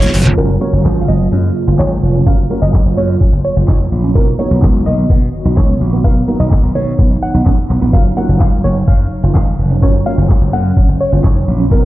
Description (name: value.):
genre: dance-pop.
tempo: 127 BPM.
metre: 4/4.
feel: straight.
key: F# major.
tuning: A4 = 440 Hz.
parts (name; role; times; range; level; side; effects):
analog pluck; melody; 0.0-11.8 s; A#4 to F#5; -22 LUFS; equal; chorus, digital delay.
airy breathy pad; sustained chords; 0.0-11.8 s; B2 to F#4; -21 LUFS; right 1 dB; chorus, sidechain pumping.
electric guitar at the edge of break-up; riff; 0.0-11.8 s; A#3 to E#4; -23 LUFS; right 4 dB; ensemble chorus.
glassy slap bass; bass; 0.0-11.8 s; E#1 to B2; -13 LUFS; equal; sidechain pumping.
pop drum kit; drums; 0.0-11.8 s; handclaps, hi-hat, kick drum, shaker, snare drum; -12 LUFS; equal; none.
warm concert grand piano; accompaniment; 0.4-11.8 s; F#3 to C#5; -22 LUFS; equal; sidechain pumping.
room: digital ambience.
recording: played on a big sound system in a bare room, stone room reverb, low-pass filter.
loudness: -10 LUFS.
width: side -16 dB against mid.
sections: 0.4-11.8 A section.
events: drum fill 0.0-0.4.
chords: 0.4 F#maj7; 4.2 Bmaj7; 7.9 F#maj7.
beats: | 0.38 0.85 1.32 1.79 | 2.26 2.74 3.21 3.68 | 4.15 4.63 5.10 5.57 | 6.04 6.52 6.99 7.46 | 7.93 8.41 8.88 9.35 | 9.82 10.30 10.77 11.24 | 11.71.